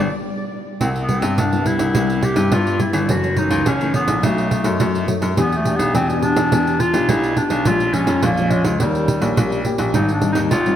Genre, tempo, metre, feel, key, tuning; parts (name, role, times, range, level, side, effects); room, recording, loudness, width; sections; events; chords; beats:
samba and choro; 105 BPM; 4/4; straight; A4 = 440 Hz
nylon-string guitar; accompaniment; 0.0-10.8 s; F2 to G4; -21 LUFS; left 2 dB; ensemble chorus
bright baby grand piano; bass; 0.0-10.8 s; F#1 to G2; -22 LUFS; left 1 dB
breathy clarinet; melody; 0.8-10.8 s; G3 to G4; -21 LUFS; equal; tape echo
pandeiro; percussion; 0.8-10.8 s; -22 LUFS; right 3 dB
moderate lush hall reverb, RT60 3.3 s; dreamy mix soaked in reverb; -16 LUFS; side -10 dB against mid
0.8-10.8 A section
band accent 0.0-0.8
0.0 N.C.; 0.8 Cmaj7; 3.1 F#m7; 4.2 B7; 5.4 Em7; 7.7 Bbm7; 8.8 Eb7; 9.9 Abmaj7
0.24 | 0.81 1.38 1.95 2.52 | 3.09 3.66 4.24 4.81 | 5.38 5.95 6.52 7.09 | 7.66 8.23 8.80 9.37 | 9.94 10.51